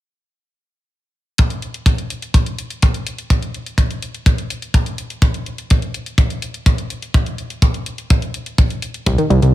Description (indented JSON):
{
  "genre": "italo disco",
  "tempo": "125 BPM",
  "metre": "4/4",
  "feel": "straight",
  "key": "C minor",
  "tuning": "A4 = 440 Hz",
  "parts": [
    { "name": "electronic hi-hat", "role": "drums", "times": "1.4-9.5 s", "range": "none", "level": "-29 LUFS", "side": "left 3 dB", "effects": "small room reverb" },
    { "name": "kick drum", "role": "drums", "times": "1.4-9.2 s", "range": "none", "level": "-15 LUFS", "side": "equal", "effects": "small room reverb" },
    { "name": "wide unison pluck", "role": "arpeggios", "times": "9.1-9.5 s", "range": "C3 to G3", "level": "-16 LUFS", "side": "right 1 dB", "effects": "analog delay" },
    { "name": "fat analog bass", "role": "bass", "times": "9.1-9.5 s", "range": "C2", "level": "-13 LUFS", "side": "equal", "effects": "none" }
  ],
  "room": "small room ambience",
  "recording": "none",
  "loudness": "-16 LUFS",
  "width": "side -15 dB against mid",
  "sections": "1.4-9.5 A section",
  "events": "none",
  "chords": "none",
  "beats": "| 1.38 1.86 2.34 2.82 | 3.30 3.78 4.26 4.74 | 5.22 5.70 6.18 6.66 | 7.14 7.62 8.10 8.58 | 9.06"
}